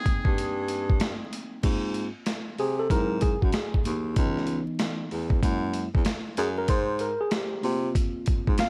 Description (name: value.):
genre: hip hop, jazz-hop.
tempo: 95 BPM.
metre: 4/4.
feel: swing 64% on 16ths.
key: Ab major.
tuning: A4 = 440 Hz.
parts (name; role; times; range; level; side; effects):
trumpet with metal mute; melody; 0.0-1.0 s; Ab4; -38 LUFS; equal; tape echo.
mellow tine electric piano; accompaniment; 0.0-8.7 s; Fb3 to G5; -33 LUFS; equal; overdrive.
boom bap sampler-style drum kit; drums; 0.1-8.7 s; crash cymbal, hi-hat, kick drum, snare drum; -29 LUFS; equal; none.
breathy baritone saxophone; bass; 0.3-8.6 s; Db2 to C3; -32 LUFS; equal; none.
room: light reverb.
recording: vinyl crackle.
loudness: -27 LUFS.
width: mono.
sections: 0.0-1.6 A section; 1.6-8.7 B section.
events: tine electric piano solo 1.6-8.7.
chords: 0.0 Ab; 1.6 Ab6; 2.9 Ab7b13; 4.2 Dbm7; 5.4 Gb9; 6.7 Ab6.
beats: 0.37 1.00 | 1.64 2.27 2.90 3.53 | 4.16 4.79 5.42 6.06 | 6.69 7.32 7.95 8.58.